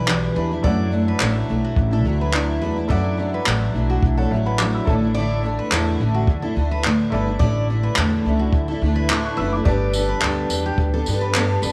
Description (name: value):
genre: acoustic pop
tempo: 107 BPM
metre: 4/4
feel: swing 55% on 16ths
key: D major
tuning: A4 = 440 Hz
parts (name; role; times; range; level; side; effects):
- felt-muted upright piano; accompaniment; 0.0-11.7 s; E4 to F#6; -34 LUFS; equal; none
- picked steel-string acoustic guitar; accompaniment; 0.0-11.7 s; E2 to A4; -25 LUFS; equal; double-tracked
- picked steel-string acoustic guitar; arpeggios; 0.0-11.7 s; F#4 to D5; -32 LUFS; equal; slapback echo
- upright bass; bass; 0.0-11.7 s; F#1 to G2; -25 LUFS; equal; none
- compact cocktail drum kit; drums; 0.1-11.7 s; handclaps, kick drum, tambourine; -24 LUFS; equal; none
room: light reverb, small room ambience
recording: none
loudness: -20 LUFS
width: mono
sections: 0.0-11.7 A section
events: none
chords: 0.0 Em7; 0.6 Dadd9; 4.9 Asus4; 9.7 Gadd9